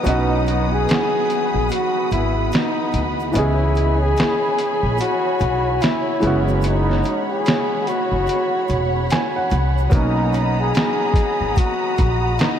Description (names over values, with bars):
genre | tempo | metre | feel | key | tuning
lo-fi hip hop | 73 BPM | 4/4 | swing 60% on 16ths | B major | A4 = 440 Hz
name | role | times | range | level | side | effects
felt-muted upright piano | accompaniment | 0.0-12.6 s | E3 to G#5 | -25 LUFS | right 2 dB | cassette tape
warm studio string section | sustained chords | 0.0-12.6 s | B3 to D#6 | -25 LUFS | equal | none
egg shaker | percussion | 0.0-12.6 s | none | -52 LUFS | right 12 dB | none
breathy flugelhorn | melody | 0.1-12.6 s | D#4 to G#4 | -22 LUFS | left 2 dB | tape echo
upright bass | bass | 0.1-12.4 s | E1 to D2 | -20 LUFS | equal | none
lo-fi sampler-style drum kit | drums | 0.1-12.6 s | hi-hat, kick drum, snare drum | -24 LUFS | equal | overdrive
room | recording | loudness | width
wet huge ambient reverb, RT60 8.3 s | dreamy mix soaked in reverb, cassette tape | -16 LUFS | side -9 dB against mid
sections
0.0-12.6 A section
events
break 0.0-9.9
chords
0.0 Bmaj7; 3.3 C#m7; 6.2 F#7sus4; 9.9 Bmaj7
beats
| 0.06 0.88 1.70 2.52 | 3.34 4.17 4.99 5.81 | 6.63 7.45 8.28 9.10 | 9.92 10.74 11.56 12.38